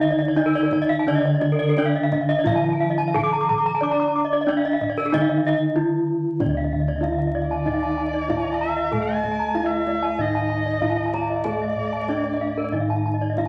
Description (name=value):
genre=Balinese gamelan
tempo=85-95 BPM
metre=4/4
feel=straight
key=D pelog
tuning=A4 = 440 Hz
part: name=gamelan-type bronze metallophone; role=melody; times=0.0-13.5 s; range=D4 to D5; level=-27 LUFS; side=equal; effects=none
part: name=gamelan-type bronze metallophone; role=accompaniment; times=0.0-13.5 s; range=D3 to D4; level=-31 LUFS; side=equal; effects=none
part: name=gamelan-type bronze metallophone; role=arpeggios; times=0.0-13.5 s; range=Bb4-40c to D6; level=-30 LUFS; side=equal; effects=none
part: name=gamelan-type bossed gongs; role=bass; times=0.0-13.5 s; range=D2 to D5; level=-32 LUFS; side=equal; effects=none
part: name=gamelan-type bronze metallophone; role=arpeggios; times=0.1-13.5 s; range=A4-45c to D6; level=-29 LUFS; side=equal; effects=none
part: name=kendang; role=percussion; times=0.4-13.5 s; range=none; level=-36 LUFS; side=equal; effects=none
part: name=warm erhu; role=second line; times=7.5-12.7 s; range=D5 to A5-42c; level=-31 LUFS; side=equal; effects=none
room=wet large studio reverb, RT60 0.9 s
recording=vinyl crackle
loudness=-22 LUFS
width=mono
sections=0.0-6.4 A section; 6.4-13.5 B section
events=none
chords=none